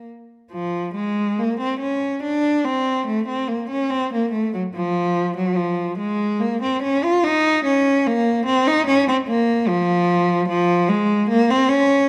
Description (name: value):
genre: classical, baroque-style suite movement for unaccompanied cello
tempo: 72 BPM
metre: 3/4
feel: rubato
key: Bb minor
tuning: A4 = 440 Hz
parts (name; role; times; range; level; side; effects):
- rich cello; solo; 0.0-12.1 s; F3 to F4; -20 LUFS; equal; none
room: moderate recital hall reverb, RT60 1.4 s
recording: none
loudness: -20 LUFS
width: mono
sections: 0.5-12.1 A section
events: none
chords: none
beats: | 0.52 1.38 2.23 | 3.07 3.90 4.74 | 5.57 6.41 7.25 | 8.07 8.89 9.69 | 10.50 11.30